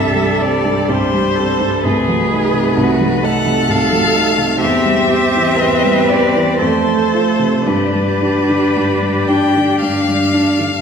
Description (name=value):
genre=classical, slow romantic movement for piano quartet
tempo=55-67 BPM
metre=3/4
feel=rubato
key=C major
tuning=A4 = 439 Hz
part: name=rich violin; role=melody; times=0.0-10.8 s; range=B4 to G5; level=-18 LUFS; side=left 6 dB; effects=none
part: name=rich cello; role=second line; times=0.0-10.3 s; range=Gb4 to B4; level=-20 LUFS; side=right 4 dB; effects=none
part: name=rich viola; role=accompaniment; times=0.0-10.6 s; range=G3 to D4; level=-20 LUFS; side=right 2 dB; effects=none
part: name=warm baby grand piano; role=accompaniment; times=0.0-10.8 s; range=C2 to G4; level=-16 LUFS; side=equal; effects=none
room=wet scoring stage reverb, RT60 2.0 s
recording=heard from further back in the room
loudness=-12 LUFS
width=side -6 dB against mid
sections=0.0-10.8 A section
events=none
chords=0.0 C; 1.9 Cdim7; 4.6 C/E; 6.6 F; 7.7 G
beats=0.89 | 1.85 2.78 3.70 | 4.61 5.59 6.61 | 7.68 8.75 9.81